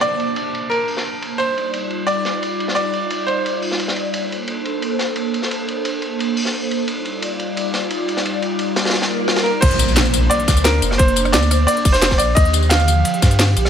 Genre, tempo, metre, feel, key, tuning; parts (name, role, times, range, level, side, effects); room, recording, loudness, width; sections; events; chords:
liquid drum and bass; 175 BPM; 4/4; straight; Bb major; A4 = 443 Hz
bright grand piano; melody; 0.0-3.9, 9.4-13.3 s; Bb4 to F5; -20 LUFS; right 1 dB; digital delay
airy breathy pad; sustained chords; 0.0-13.7 s; D3 to A5; -23 LUFS; equal; chorus, phaser
crunchy breakbeat drum kit; drums; 0.0-13.7 s; hi-hat, ride cymbal, snare drum; -24 LUFS; equal; high-pass filter on cymbals, low-pass filter on cymbals, high-pass filter on hats, low-pass filter on hats, high-pass filter on snare, low-pass filter on snare, high-pass filter on room, low-pass filter on room
drum and bass drum kit; drums; 0.0-13.7 s; crash cymbal, hi-hat, rim click, snare drum, tambourine; -21 LUFS; left 2 dB; low-pass filter on hats, low-pass filter on cymbals, low-pass filter on perc, low-pass filter on snare, low-pass filter on toms
downlifter, swell and impact; sound effects; 0.0-1.4, 9.1-11.0 s; -26 LUFS; equal
warm sub bass; bass; 9.6-13.7 s; F1 to G2; -17 LUFS; equal
electronic kick drum; drums; 9.6-13.3 s; -15 LUFS; equal
light reverb, small room ambience; -16 LUFS; side -8 dB against mid
0.0-9.6 A section; 9.6-13.7 B section
filter sweep on analog synth pad 0.0-9.6; swell 9.1-9.6; drop 9.6-13.7; impact 9.6-11.0
0.0 Bbmaj9; 1.4 Ebmaj9; 4.1 Bbmaj9; 6.9 Ebmaj9; 9.6 Bbadd9; 12.4 Ebmaj9